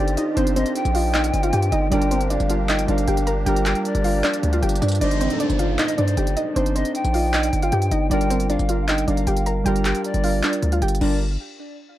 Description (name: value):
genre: hip hop, trap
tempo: 155 BPM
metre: 4/4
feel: half-time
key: G minor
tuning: A4 = 438 Hz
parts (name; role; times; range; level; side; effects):
- soft round pluck; melody; 0.0-11.2 s; C4 to Bb5; -24 LUFS; equal; chorus, tape echo
- reedy pan flute; second line; 0.0-11.2 s; D5 to G5; -29 LUFS; left 2 dB; tape echo
- warbly lo-fi synth keys; accompaniment; 0.0-11.2 s; G3 to Eb5; -26 LUFS; right 2 dB; chorus
- musette accordion; sustained chords; 0.0-5.0 s; Eb3 to G4; -32 LUFS; right 1 dB; none
- hard-hitting 808-style bass; bass; 0.0-11.4 s; G1 to G2; -22 LUFS; equal; none
- trap drum kit; drums; 0.1-11.1 s; crash cymbal, handclaps, hi-hat; -28 LUFS; equal; none
- downlifter; sound effects; 5.0-8.1 s; none; -32 LUFS; equal; none
room: little or no reverb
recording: dark, warm production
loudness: -18 LUFS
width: side -14 dB against mid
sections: 0.0-5.0 A section; 5.0-11.2 B section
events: none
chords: 0.0 Cmadd9/G; 1.9 Gm7; 5.0 Cmadd9/G; 8.1 Gm7; 11.2 N.C.